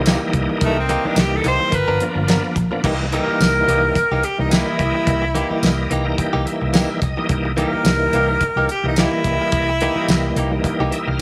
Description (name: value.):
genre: straight-eighth soul blues.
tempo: 108 BPM.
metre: 4/4.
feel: swing 56% on 16ths.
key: C mixolydian.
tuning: A4 = 440 Hz.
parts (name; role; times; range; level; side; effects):
bright tonewheel organ; accompaniment; 0.0-11.2 s; E3 to Bb5; -25 LUFS; equal; slow rotary speaker, overdrive, chorus vibrato.
clear horn section; sustained chords; 0.0-2.3 s; D#4 to Bb4; -32 LUFS; equal; none.
vintage muted fingered electric bass; bass; 0.0-11.2 s; G1 to C2; -25 LUFS; equal; none.
direct-recorded clean electric guitar; stabs; 0.1-11.2 s; E3 to A#4; -28 LUFS; equal; none.
damped 70s drum kit; drums; 0.1-11.1 s; crash cymbal, hi-hat, kick drum, snare drum, tambourine; -23 LUFS; equal; none.
bright tenor saxophone; melody; 0.6-10.6 s; A3 to C5; -23 LUFS; equal; none.
room: light reverb, small room ambience.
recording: none.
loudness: -18 LUFS.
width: mono.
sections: 0.0-2.8 A section; 2.8-11.2 B section.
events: tenor saxophone solo 0.0-2.8; tonewheel organ fill 5.6-7.3, 10.6-11.2.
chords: 0.0 C7#9; 1.7 G7#9; 2.8 C7#9.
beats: 0.06 | 0.61 1.17 1.73 2.28 | 2.84 3.40 3.96 4.51 | 5.07 5.63 6.18 6.74 | 7.30 7.86 8.41 8.97 | 9.53 10.08 10.64 11.20.